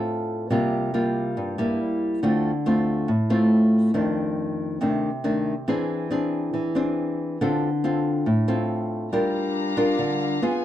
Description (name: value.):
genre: bossa nova.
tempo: 139 BPM.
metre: 4/4.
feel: straight.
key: D minor.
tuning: A4 = 440 Hz.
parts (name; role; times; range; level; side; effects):
nylon-string guitar; accompaniment; 0.0-10.6 s; F2 to Bb4; -21 LUFS; equal; none.
warm chamber string section; sustained chords; 9.1-10.6 s; G3 to Bb5; -29 LUFS; left 2 dB; none.
room: moderate small room reverb, RT60 0.5 s.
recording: dark, warm production.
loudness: -21 LUFS.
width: side -12 dB against mid.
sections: 0.0-9.1 A section; 9.1-10.6 B section.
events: none.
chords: 0.5 C7sus4; 1.8 Gm6; 2.2 Dm7; 4.0 F6; 5.7 Eaug7; 7.4 Dm7; 9.1 Gm7.